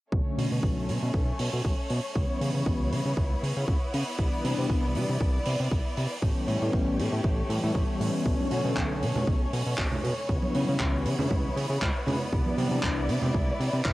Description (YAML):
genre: nu-disco, nu disco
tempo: 118 BPM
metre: 4/4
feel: swing 54% on 16ths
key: B minor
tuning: A4 = 439 Hz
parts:
  - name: warm analog pad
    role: accompaniment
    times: 0.1-12.9 s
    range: D3 to E4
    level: -32 LUFS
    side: left 1 dB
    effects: chorus, cassette tape, analog delay
  - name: muted studio violin section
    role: sustained chords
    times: 0.1-13.9 s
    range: A3 to D5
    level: -34 LUFS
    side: equal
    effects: sidechain pumping, cassette tape
  - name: fat analog bass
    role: bass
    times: 0.1-13.9 s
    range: A1 to C#3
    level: -29 LUFS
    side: equal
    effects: none
  - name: electronic kick drum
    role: drums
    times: 0.1-13.9 s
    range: none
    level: -28 LUFS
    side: equal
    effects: none
  - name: tight funk drum kit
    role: drums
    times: 0.4-13.9 s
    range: handclaps, hi-hat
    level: -36 LUFS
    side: right 2 dB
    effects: none
  - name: congas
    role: percussion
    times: 8.4-13.3 s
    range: none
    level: -34 LUFS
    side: right 2 dB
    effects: none
room: light reverb, small room ambience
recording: home recording on cassette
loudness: -25 LUFS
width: side -17 dB against mid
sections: 0.1-13.9 A section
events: filter sweep on analog synth bass 0.1-13.9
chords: 0.1 Bm9; 2.2 C#m7b5; 4.2 Cmaj9; 6.2 A7; 8.3 Bm9; 10.3 C#m7b5; 12.3 Cmaj9